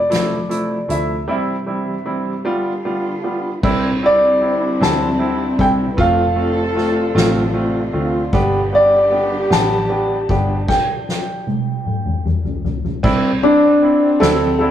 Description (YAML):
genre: six-eight pop ballad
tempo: 51 BPM (dotted quarters)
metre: 6/8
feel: straight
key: C major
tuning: A4 = 440 Hz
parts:
  - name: warm baby grand piano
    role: melody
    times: 0.0-14.7 s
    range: D4 to A5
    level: -17 LUFS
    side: equal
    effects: none
  - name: warm studio string section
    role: sustained chords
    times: 0.0-10.7 s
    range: G2 to G4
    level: -28 LUFS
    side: right 1 dB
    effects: none
  - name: vintage muted fingered electric bass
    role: bass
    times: 0.0-14.7 s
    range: F1 to D2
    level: -23 LUFS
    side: equal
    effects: none
  - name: clear grand piano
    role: accompaniment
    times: 0.1-14.7 s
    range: F3 to G4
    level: -20 LUFS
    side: right 1 dB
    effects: none
  - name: soft-mallet drum kit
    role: drums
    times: 0.1-14.7 s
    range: crash cymbal, hi-hat, kick drum, ride cymbal, snare drum, toms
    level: -21 LUFS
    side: left 1 dB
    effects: none
  - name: warm French horn section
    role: second line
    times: 3.6-14.7 s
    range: C4 to B4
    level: -23 LUFS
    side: left 1 dB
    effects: tape echo
room: wet stone room reverb, RT60 1.1 s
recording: rough rehearsal-room recording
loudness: -14 LUFS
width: side -10 dB against mid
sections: 0.0-3.6 A section; 3.6-13.0 B section; 13.0-14.7 B section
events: break 1.3-3.6; drum fill 10.7-13.0; stop 10.7-13.0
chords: 0.0 Fmaj7; 1.3 C/G; 2.5 G7; 3.6 Cadd9; 6.0 F; 8.3 G; 10.7 N.C.; 13.0 Cadd9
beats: 0.11 | 1.29 2.46 | 3.63 4.81 | 5.98 7.16 | 8.33 9.51 | 10.68 11.86 | 13.04 14.21